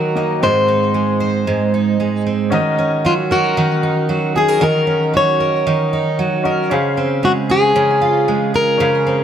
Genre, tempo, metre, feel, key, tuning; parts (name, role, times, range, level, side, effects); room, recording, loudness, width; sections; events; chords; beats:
acoustic pop; 115 BPM; 4/4; straight; A4 = 440 Hz
fingerpicked plugged-in steel-string acoustic guitar; melody; 0.0-9.2 s; F4 to Db5; -16 LUFS; left 1 dB; digital delay
fingerpicked twelve-string acoustic guitar; accompaniment; 0.0-9.2 s; Ab2 to C5; -17 LUFS; right 3 dB
warm upright piano; accompaniment; 0.0-9.2 s; Bb3 to F5; -24 LUFS; left 5 dB
moderate plate reverb, RT60 3.5 s; -13 LUFS; side -9 dB against mid
0.0-2.5 A section; 2.5-9.2 B section
0.4 Ab; 2.5 Ebm7; 6.7 Dbmaj7
| 0.43 0.95 1.48 2.00 | 2.53 3.05 3.57 4.10 | 4.62 5.14 5.66 6.19 | 6.71 7.23 7.75 8.28 | 8.80